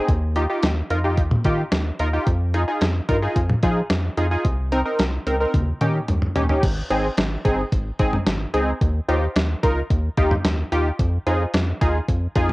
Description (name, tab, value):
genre	synth-pop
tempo	110 BPM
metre	4/4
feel	straight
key	Ab major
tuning	A4 = 439 Hz
part	warm analog keys	accompaniment	0.0-12.5 s	C4 to Bb4	-23 LUFS	equal	chorus, cassette tape
part	rubbery square bass	bass	0.1-12.5 s	G1 to F3	-23 LUFS	equal	none
part	clean 12-bit digital drum machine	drums	0.1-12.5 s	cowbell, crash cymbal, hi-hat, kick drum, snare drum, toms	-22 LUFS	equal	cassette tape
room	light reverb, digital ambience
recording	home recording on cassette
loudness	-19 LUFS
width	side -20 dB against mid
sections	0.0-6.6 A section; 6.6-12.5 B section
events	drum fill 5.5-6.6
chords	0.1 Ebadd9; 2.3 Fm7; 4.5 Cm7; 5.5 Eb7; 6.6 Ab; 8.8 Ebadd9; 11.0 Fm7